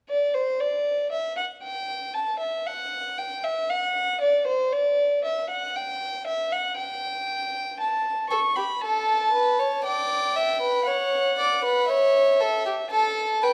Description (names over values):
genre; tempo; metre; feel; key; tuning
classical, baroque-style fugue for string quartet; 58 BPM; 4/4; straight; G major; A4 = 437 Hz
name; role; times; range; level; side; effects
warm violin; melody; 0.1-13.5 s; C5 to C#6; -27 LUFS; equal; none
warm violin; second line; 8.3-13.5 s; G4 to E5; -25 LUFS; equal; none
room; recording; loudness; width
moderate recital hall reverb, RT60 1.6 s; none; -25 LUFS; mono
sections
0.0-13.5 A section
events
none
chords
0.0 N.C.; 7.8 Gadd9 (rootless); 9.8 Em7 (rootless); 11.9 A